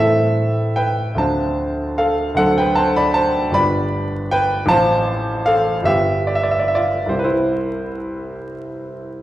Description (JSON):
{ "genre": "classical, romantic character piece for solo piano", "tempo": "47-52 BPM (dotted quarters)", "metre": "6/8", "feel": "rubato", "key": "C major", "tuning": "A4 = 440 Hz", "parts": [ { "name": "clear grand piano", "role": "solo", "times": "0.0-9.2 s", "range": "G1 to B5", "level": "-16 LUFS", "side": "equal", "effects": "none" } ], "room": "wet recital hall reverb, RT60 1.4 s", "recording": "heard from further back in the room, vinyl crackle", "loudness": "-16 LUFS", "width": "side -14 dB against mid", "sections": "0.0-9.2 A section", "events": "none", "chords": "0.0 Am; 1.2 Dm7; 2.4 D7; 3.5 G; 4.7 F/A; 5.9 G7; 7.1 C" }